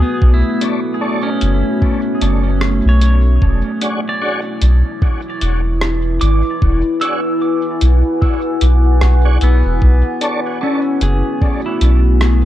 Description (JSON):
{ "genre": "ambient dub", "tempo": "75 BPM", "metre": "4/4", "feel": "swing 59% on 16ths", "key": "E mixolydian", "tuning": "A4 = 440 Hz", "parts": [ { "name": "deep dark ambient pad", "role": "sustained chords", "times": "0.0-12.4 s", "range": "A3 to G#5", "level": "-19 LUFS", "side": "left 1 dB", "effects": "chorus, built-in reverb" }, { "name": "pedal steel guitar", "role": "arpeggios", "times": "0.0-12.4 s", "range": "B3 to E6", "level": "-22 LUFS", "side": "equal", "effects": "dub echo" }, { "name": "soft dub sub bass", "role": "bass", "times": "0.0-12.4 s", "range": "E1 to B1", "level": "-12 LUFS", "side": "equal", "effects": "none" }, { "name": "electronic kick drum", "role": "drums", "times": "0.2-11.6 s", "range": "none", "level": "-15 LUFS", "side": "equal", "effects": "none" }, { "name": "tonewheel organ", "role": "stabs", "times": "0.6-10.8 s", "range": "D4 to C#5", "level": "-26 LUFS", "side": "equal", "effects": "chorus vibrato, slow rotary speaker, low-pass filter, dub echo" }, { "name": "lo-fi sampler-style drum kit", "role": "drums", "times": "0.6-12.4 s", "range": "hi-hat, rim click", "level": "-23 LUFS", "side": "equal", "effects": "none" } ], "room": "light reverb", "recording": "none", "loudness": "-12 LUFS", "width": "side -13 dB against mid", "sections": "0.0-12.4 A section", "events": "none", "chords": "0.0 Bm9; 3.4 E13; 9.8 Bm9", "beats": "| 0.22 1.02 1.82 2.62 | 3.42 4.22 5.02 5.82 | 6.62 7.42 8.22 9.02 | 9.82 10.62 11.42 12.22" }